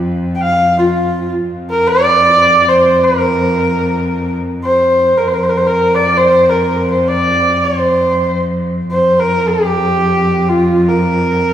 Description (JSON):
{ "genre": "mongolian traditional, Mongolian folk", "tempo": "free time", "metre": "none", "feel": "none", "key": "F zhi mode", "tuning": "A4 = 441 Hz", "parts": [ { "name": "bright cello", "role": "drone", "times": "0.0-11.5 s", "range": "F2", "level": "-18 LUFS", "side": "left 1 dB", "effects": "none" }, { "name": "clear horsehead fiddle", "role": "melody", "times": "0.4-11.5 s", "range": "F4 to G5", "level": "-12 LUFS", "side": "equal", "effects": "tape echo" } ], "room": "wet recital hall reverb, RT60 1.7 s", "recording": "heard from further back in the room", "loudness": "-11 LUFS", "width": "side -10 dB against mid", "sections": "0.0-1.4 A section; 1.4-11.5 A section", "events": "none", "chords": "none", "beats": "free time" }